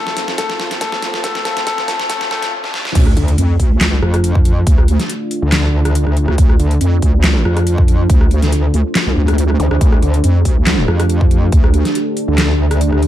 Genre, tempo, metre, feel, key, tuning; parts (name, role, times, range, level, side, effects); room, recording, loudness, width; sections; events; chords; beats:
heavy wobble dubstep; 140 BPM; 4/4; swing 53% on 16ths, half-time; D minor; A4 = 440 Hz
warm grand piano; melody; 0.0-2.5 s; A3 to A4; -21 LUFS; left 4 dB; digital delay
supersaw pad; sustained chords; 0.0-13.1 s; A3 to G4; -24 LUFS; equal; sidechain pumping, low-pass filter
riser, sub drop and zap; sound effects; 0.1-4.7, 9.6-9.7 s; -26 LUFS; equal
deep dark ambient pad; texture; 0.0-13.1 s; D4 to G5; -25 LUFS; right 1 dB; chorus, built-in reverb, sidechain pumping
dubstep drum kit; drums; 0.1-13.1 s; crash cymbal, handclaps, hi-hat, rim click, snare drum; -20 LUFS; equal; overdrive
electronic kick drum; drums; 0.4-11.6 s; -12 LUFS; equal
wobble bass; bass; 3.0-11.8 s; C2 to F2; -14 LUFS; equal; chorus, overdrive
metallic wobble bass; bass; 3.2-13.1 s; D2 to F2; -13 LUFS; equal; chorus, overdrive
little or no reverb; dark, warm production, high-pass filter; -12 LUFS; side -12 dB against mid
0.0-3.0 A section; 3.0-13.1 B section
build-up 0.0-3.0; drum fill 0.0-2.5, 2.6-3.0; riser 0.1-3.0; break 2.5-3.0; drop 3.0-13.1; impact 3.0-4.7
0.0 F; 3.0 Dm
0.38 0.81 | 1.24 1.67 2.10 2.52 | 2.95 3.38 3.81 4.24 | 4.67 5.10 5.52 5.95 | 6.38 6.81 7.24 7.67 | 8.10 8.52 8.95 9.38 | 9.81 10.24 10.67 11.10 | 11.52 11.95 12.38 12.81